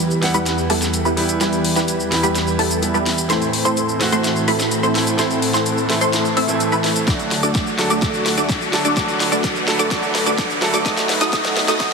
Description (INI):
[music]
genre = EDM, festival progressive house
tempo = 127 BPM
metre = 4/4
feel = straight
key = E minor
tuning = A4 = 440 Hz
[part]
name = clear concert grand piano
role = accompaniment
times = 0.0-11.9 s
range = E3 to F#5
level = -23 LUFS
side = right 3 dB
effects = sidechain pumping, digital delay
[part]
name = lush unison pad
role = sustained chords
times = 0.0-11.9 s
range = D2 to B4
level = -25 LUFS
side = left 1 dB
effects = chorus, sidechain pumping
[part]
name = wide unison pluck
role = arpeggios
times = 0.0-11.9 s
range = A5 to E6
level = -25 LUFS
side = equal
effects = lush chorus, sidechain pumping, digital delay
[part]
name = supersaw stab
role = riff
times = 0.0-11.9 s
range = G3 to E5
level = -21 LUFS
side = equal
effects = wide subtle chorus, sidechain pumping, low-pass filter, digital delay
[part]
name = riser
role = sound effects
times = 0.0-11.9 s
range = none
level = -29 LUFS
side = left 1 dB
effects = none
[part]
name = house drum kit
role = drums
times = 0.1-11.9 s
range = hi-hat, shaker, snare drum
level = -22 LUFS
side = left 2 dB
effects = overdrive, high-pass filter on hats, studio ambience, high-pass filter on snare, high-pass filter on perc
[part]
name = electronic kick drum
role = drums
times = 7.1-11.9 s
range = none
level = -23 LUFS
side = left 1 dB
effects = overdrive, studio ambience
[sound]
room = wet lush hall reverb, RT60 1.8 s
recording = dense, heavily limited modern master, high-pass filter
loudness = -16 LUFS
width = side -4 dB against mid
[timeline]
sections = 0.0-11.9 A section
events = build-up 0.0-11.9; drum fill 0.0-11.9; riser 0.0-11.9; filter sweep on supersaw synth 0.0-11.9; filter sweep on synth pluck 0.0-11.9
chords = 0.0 Em; 3.3 Am; 7.1 D; 10.9 B